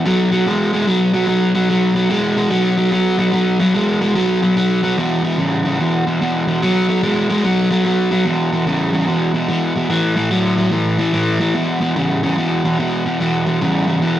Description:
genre	blues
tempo	146 BPM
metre	4/4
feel	swing 65% on 8ths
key	E major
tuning	A4 = 440 Hz
part	crunchy overdriven guitar	solo	0.0-14.2 s	E2 to G#3	-14 LUFS	equal	spring reverb
room	moderate stone room reverb, RT60 1.0 s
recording	rough rehearsal-room recording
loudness	-14 LUFS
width	side -12 dB against mid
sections	0.0-8.3 A section; 8.3-14.2 B section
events	none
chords	0.0 B5; 5.0 E5; 6.6 B5; 8.3 E5; 9.9 A5; 11.6 E5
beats	| 0.05 0.46 0.87 1.28 | 1.69 2.10 2.51 2.92 | 3.33 3.75 4.16 4.57 | 4.98 5.39 5.80 6.21 | 6.62 7.03 7.44 7.85 | 8.26 8.67 9.08 9.49 | 9.90 10.31 10.73 11.14 | 11.55 11.96 12.38 12.79 | 13.20 13.61 14.03

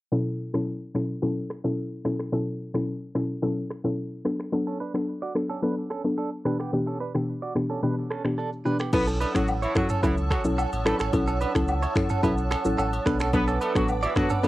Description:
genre	afrobeats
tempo	109 BPM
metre	4/4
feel	straight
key	unclear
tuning	A4 = 440 Hz
part	soft round pluck	accompaniment	0.1-14.5 s	B2 to A4	-26 LUFS	left 1 dB	chorus
part	afro-pop drum kit	drums	0.1-14.5 s	crash cymbal, finger snaps, kick drum, rim click, shaker, toms	-29 LUFS	equal	vintage 12-bit sampler grit, cassette tape
part	direct-recorded clean electric guitar	riff	4.7-14.5 s	B3 to D5	-32 LUFS	right 4 dB	tremolo, analog delay
part	clear horn section	second line	8.9-14.5 s	E3 to B4	-30 LUFS	equal	none
part	glassy FM pad	sustained chords	8.9-14.5 s	B4 to E6	-32 LUFS	right 2 dB	ensemble chorus, built-in reverb
part	sub bass with octave	bass	8.9-14.5 s	F#1 to C#2	-29 LUFS	equal	none
part	agogo bells and woodblock	percussion	8.9-14.5 s	none	-36 LUFS	left 2 dB	none
room	light reverb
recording	home recording on cassette, low-pass filter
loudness	-24 LUFS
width	side -16 dB against mid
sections	0.1-8.9 A section; 8.9-14.5 B section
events	filter sweep 0.1-8.9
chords	0.1 F#m7/B; 4.3 Bm7; 6.5 Em7/B; 8.9 F#m7; 13.1 Bm7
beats	| 0.12 0.67 1.22 1.77 | 2.33 2.88 3.43 3.98 | 4.53 5.08 5.63 6.18 | 6.73 7.28 7.83 8.38 | 8.93 9.48 10.03 10.58 | 11.13 11.68 12.23 12.78 | 13.33 13.88 14.44

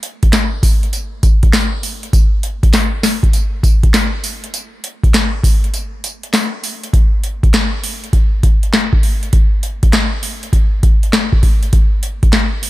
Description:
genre	R&B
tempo	100 BPM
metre	4/4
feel	swing 66% on 16ths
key	none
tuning	none
part	booming analog drum machine	drums	0.0-12.7 s	handclaps, hi-hat, kick drum, snare drum, tambourine	-12 LUFS	equal	overdrive
room	little or no reverb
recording	none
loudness	-12 LUFS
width	side -17 dB against mid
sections	0.0-6.9 A section; 6.9-12.7 B section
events	break 5.7-6.9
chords	none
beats	0.33 0.93 1.53 | 2.13 2.73 3.33 3.93 | 4.53 5.13 5.73 6.33 | 6.93 7.53 8.13 8.73 | 9.33 9.93 10.53 11.13 | 11.73 12.33

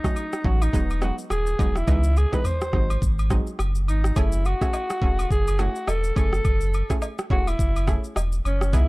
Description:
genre	afrobeats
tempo	105 BPM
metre	4/4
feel	swing 58% on 16ths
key	unclear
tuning	A4 = 441 Hz
part	growling alto saxophone	melody	0.0-8.9 s	C#4 to B#4	-29 LUFS	equal	none
part	analog pluck	accompaniment	0.0-8.9 s	E3 to G#4	-31 LUFS	right 2 dB	chorus
part	afro-pop drum kit	drums	0.0-8.9 s	kick drum, rim click, shaker, toms	-24 LUFS	equal	none
part	agogo bells and woodblock	percussion	0.2-8.9 s	none	-37 LUFS	left 2 dB	none
part	warm sub bass	bass	0.4-8.9 s	D#1 to C#2	-23 LUFS	equal	none
room	little or no reverb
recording	dark, warm production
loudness	-20 LUFS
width	side -22 dB against mid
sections	0.0-4.2 A section; 4.2-8.9 B section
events	none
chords	0.0 B9 (rootless); 0.7 Emaj7; 1.9 C#m9; 2.7 G#7; 4.2 F#m7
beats	0.16 0.73 1.30 | 1.88 2.45 3.02 3.59 | 4.16 4.73 5.30 5.88 | 6.45 7.02 7.59 8.16 | 8.73

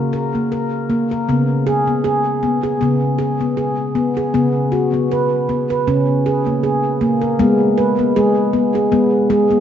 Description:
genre	world meditative, meditative tuned percussion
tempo	78 BPM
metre	4/4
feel	swing 55% on 16ths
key	unclear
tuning	A4 = 438 Hz
part	handpan	solo	0.0-9.6 s	C#3 to B4	-14 LUFS	equal	diffuse ambient delay
room	wet echo chamber reverb, RT60 2.0 s, small room ambience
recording	nothing above 7.7 kHz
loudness	-14 LUFS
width	side -9 dB against mid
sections	0.0-7.4 A section; 7.4-9.6 B section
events	none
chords	0.0 F#/C# (rootless); 1.3 G#madd11/C#; 4.3 B5/C#; 5.9 C#5; 7.4 G#m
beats	0.52 | 1.28 2.05 2.82 3.58 | 4.35 5.11 5.88 6.64 | 7.40 8.16 8.93

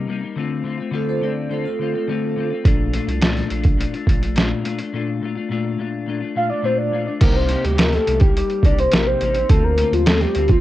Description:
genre	indie pop, bedroom pop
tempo	105 BPM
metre	4/4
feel	straight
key	Bb major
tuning	A4 = 440 Hz
part	clean electric guitar	accompaniment	0.0-10.6 s	Bb2 to G4	-24 LUFS	left 5 dB	analog chorus, vibrato effect, cassette tape
part	vibraphone with hard mallets	second line	0.9-2.5 s	F4 to D5	-26 LUFS	right 6 dB	lush chorus, cassette tape, analog delay
part	saturated sub bass	bass	2.7-10.6 s	A1 to Eb2	-22 LUFS	right 1 dB	none
part	lo-fi sampler-style drum kit	drums	2.7-10.6 s	crash cymbal, hi-hat, kick drum, snare drum	-17 LUFS	right 1 dB	overdrive, cassette tape
part	soft octave-layered synth lead	melody	6.4-10.6 s	F4 to F5	-20 LUFS	equal	wide subtle chorus, cassette tape
room	digital ambience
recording	home recording on cassette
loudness	-17 LUFS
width	side -15 dB against mid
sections	0.0-7.2 A section; 7.2-10.6 B section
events	break 4.9-7.2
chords	0.4 Dm7; 2.7 Bbmaj7; 7.2 Cm7; 9.5 Dm7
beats	| 0.37 0.94 1.51 2.08 | 2.65 3.22 3.79 4.36 | 4.93 5.50 6.07 6.64 | 7.21 7.78 8.35 8.92 | 9.49 10.06

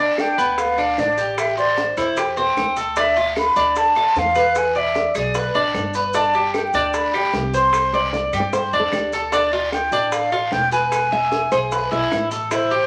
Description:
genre	latin, Cuban son and guajira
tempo	151 BPM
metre	4/4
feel	straight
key	unclear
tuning	A4 = 442 Hz
part	breathy jazz flute	melody	0.0-12.9 s	C5 to C6	-22 LUFS	equal	none
part	Cuban tres	arpeggios	0.0-12.9 s	B3 to E5	-23 LUFS	equal	none
part	bongos	percussion	0.2-12.7 s	none	-31 LUFS	equal	none
part	claves	percussion	0.2-12.3 s	none	-37 LUFS	equal	none
part	guiro	percussion	0.2-12.9 s	none	-37 LUFS	equal	none
part	maracas	percussion	0.2-12.9 s	none	-43 LUFS	equal	none
part	upright bass	bass	0.4-12.9 s	E1 to G2	-34 LUFS	equal	none
part	flamenco guitar	second line	7.9-12.5 s	G4 to E5	-28 LUFS	equal	none
room	wet studio reverb, RT60 0.7 s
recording	vinyl crackle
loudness	-19 LUFS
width	mono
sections	0.0-12.5 A section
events	none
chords	0.0 G7; 1.4 Am7; 3.0 Dmadd9; 4.6 E7; 6.1 G; 7.7 Csus2; 9.3 Dm; 10.9 E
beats	0.18 0.58 0.98 | 1.38 1.77 2.17 2.57 | 2.96 3.36 3.76 4.16 | 4.55 4.95 5.35 5.75 | 6.14 6.54 6.94 7.34 | 7.73 8.13 8.53 8.93 | 9.32 9.72 10.12 10.52 | 10.92 11.32 11.71 12.11 | 12.51

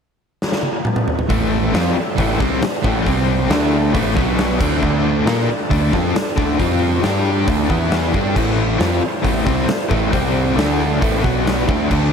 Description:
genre	hard rock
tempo	136 BPM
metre	4/4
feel	straight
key	A minor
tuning	A4 = 440 Hz
part	huge arena drum kit	drums	0.4-12.0 s	crash cymbal, hi-hat, kick drum, snare drum, toms	-20 LUFS	equal	none
part	overdriven tonewheel organ	sustained chords	1.3-12.1 s	D4 to C6	-29 LUFS	right 2 dB	none
part	biting overdriven guitar	riff	1.3-12.1 s	A2 to Bb4	-20 LUFS	left 10 dB	tremolo
part	sludgy distorted guitar	riff	1.3-12.1 s	A2 to Bb4	-22 LUFS	right 13 dB	overdrive
part	growling picked electric bass	bass	1.3-12.1 s	A1 to Bb2	-22 LUFS	right 1 dB	overdrive
room	light reverb, studio reverb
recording	none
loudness	-15 LUFS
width	side -6 dB against mid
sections	0.0-1.3 A section; 1.3-12.1 B section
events	drum fill 0.4-1.3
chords	0.0 N.C.; 1.3 Am; 3.1 C5; 3.5 D5; 3.9 Am; 4.2 B5; 4.6 Am; 4.8 D5; 6.6 F5; 7.0 G5; 7.5 D5; 7.7 E5; 8.1 D5; 8.4 Am; 10.1 C5; 10.6 D5; 11.0 Am; 11.2 B5; 11.7 Am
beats	0.41 0.85 | 1.29 1.74 2.18 2.62 | 3.06 3.51 3.95 4.39 | 4.83 5.27 5.71 6.16 | 6.60 7.04 7.48 7.92 | 8.36 8.80 9.24 9.69 | 10.13 10.57 11.01 11.45 | 11.89

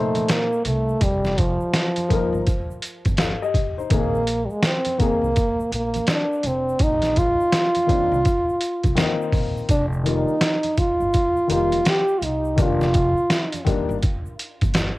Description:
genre	hip hop, jazz-hop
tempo	83 BPM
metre	4/4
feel	swing 63% on 16ths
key	unclear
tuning	A4 = 440 Hz
part	warm French horn	melody	0.0-13.6 s	F3 to G4	-22 LUFS	right 1 dB	cassette tape, tape echo
part	dark baby grand piano	accompaniment	0.0-14.0 s	Bb2 to F5	-25 LUFS	left 5 dB	cassette tape
part	upright bass	bass	0.0-14.9 s	F1 to C2	-26 LUFS	equal	tube saturation
part	trip hop sampler-style drum kit	drums	0.1-15.0 s	hi-hat, kick drum, snare drum	-22 LUFS	equal	none
part	congas and tube shaker	percussion	0.2-15.0 s	none	-37 LUFS	right 5 dB	none
room	light reverb, studio ambience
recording	home recording on cassette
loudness	-18 LUFS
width	side -19 dB against mid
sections	0.0-15.0 A section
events	none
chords	0.0 F9sus4; 3.9 Bbsus4; 9.7 F9sus4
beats	0.29 | 1.01 1.74 2.46 3.18 | 3.90 4.63 5.35 6.07 | 6.80 7.52 8.24 8.96 | 9.69 10.41 11.13 11.86 | 12.58 13.30 14.03 14.75

